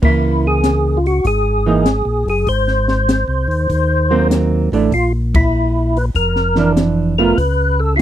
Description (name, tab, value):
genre	soul jazz organ trio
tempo	98 BPM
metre	4/4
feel	swing 69% on 8ths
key	unclear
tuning	A4 = 441 Hz
part	percussive tonewheel organ	melody	0.0-8.0 s	E4 to B#4	-17 LUFS	left 1 dB	slow rotary speaker, chorus vibrato
part	vintage hollow-body jazz guitar	accompaniment	0.0-7.4 s	E3 to E#4	-16 LUFS	right 5 dB	none
part	tonewheel organ	bass	0.0-8.0 s	E#1 to D#2	-17 LUFS	equal	slow rotary speaker
part	compact cocktail drum kit	drums	0.0-8.0 s	crash cymbal, hi-hat, kick drum, ride cymbal, snare drum	-17 LUFS	left 1 dB	none
room	little or no reverb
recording	dry, close 1970s-style studio recording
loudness	-13 LUFS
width	side -11 dB against mid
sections	0.0-8.0 A section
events	band accent 5.2-5.5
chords	0.0 C#m6; 2.5 G#9; 4.9 A#(#11); 7.4 C#(#5, no3)